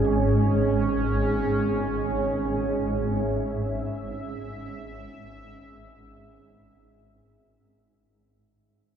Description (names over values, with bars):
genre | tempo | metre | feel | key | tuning
dark ambient drone | free time | none | none | unclear | A4 = 440 Hz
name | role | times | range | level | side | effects
sweeping resonant pad | sustained chords | 0.0-8.2 s | C#4 to E5 | -27 LUFS | right 2 dB | chorus
dark detuned synth bell | arpeggios | 0.0-3.5 s | none | barely audible | none | none
swarming drone | drone | 0.0-8.3 s | G#1 to G#2 | -26 LUFS | equal | built-in reverb
wind-like tuned noise texture | texture | 0.0-8.2 s | G#3 to G#4 | -39 LUFS | right 2 dB | none
room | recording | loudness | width
wet huge ambient reverb, RT60 8.5 s | dark, warm production | -23 LUFS | side -8 dB against mid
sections
0.0-8.2 A section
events
fade-out 0.0-8.2; filter sweep on synth drone 0.0-8.2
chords
0.0 C#m